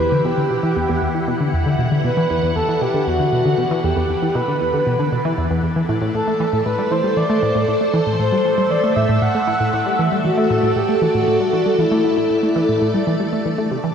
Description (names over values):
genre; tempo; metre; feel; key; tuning
ambient, sequencer-driven space music; 117 BPM; 4/4; straight; unclear; A4 = 439 Hz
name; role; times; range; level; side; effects
breathy flute-like synth lead; melody; 0.0-13.6 s; E4 to F#5; -20 LUFS; equal; tremolo, lush chorus, shimmer reverb, analog delay
phased string machine; sustained chords; 0.0-13.9 s; E3 to F#5; -21 LUFS; equal; ensemble chorus, phaser, shimmer reverb
tight sequenced synth; riff; 0.0-13.9 s; E2 to A3; -20 LUFS; equal; chorus, shimmer reverb, analog delay
bubbling stepped-filter texture; texture; 0.9-13.9 s; D4 to D5; -36 LUFS; equal; chorus, built-in reverb, shimmer reverb
room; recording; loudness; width
wet lush hall reverb, RT60 3.1 s; none; -16 LUFS; side -7 dB against mid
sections
0.0-13.9 A section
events
fade-in on synth texture 0.0-13.9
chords
0.0 Emadd9; 5.9 Am